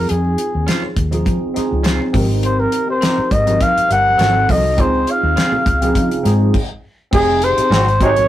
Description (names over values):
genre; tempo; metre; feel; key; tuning
lush 1970s-style soul; 102 BPM; 4/4; swing 54% on 16ths; unclear; A4 = 438 Hz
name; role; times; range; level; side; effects
warm flugelhorn; melody; 0.0-8.3 s; Ab4 to Gb5; -16 LUFS; left 1 dB; none
tine electric piano; accompaniment; 0.0-8.3 s; C4 to Bb4; -20 LUFS; right 1 dB; overdrive, phaser
vintage muted fingered electric bass; bass; 0.0-8.3 s; F1 to Db3; -18 LUFS; equal; none
damped 70s drum kit; drums; 0.1-8.3 s; crash cymbal, hi-hat, kick drum, snare drum; -19 LUFS; equal; none
congas; percussion; 0.1-8.3 s; none; -27 LUFS; equal; none
electric guitar at the edge of break-up; riff; 0.7-7.9 s; C4 to C5; -26 LUFS; right 2 dB; warbly pitch drift
clear trombone section; stabs; 7.7-8.1 s; Ab2 to Eb4; -21 LUFS; left 2 dB; none
room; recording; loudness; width
moderate small room reverb, RT60 0.5 s; rough rehearsal-room recording, warm saturation; -13 LUFS; side -13 dB against mid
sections
0.0-7.1 A section; 7.1-8.3 B section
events
stop 6.5-7.1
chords
0.0 Dbmaj7; 2.1 Abmaj9; 4.2 Ab7b9; 4.8 Dbmaj7; 7.1 Fm7; 7.7 Ab7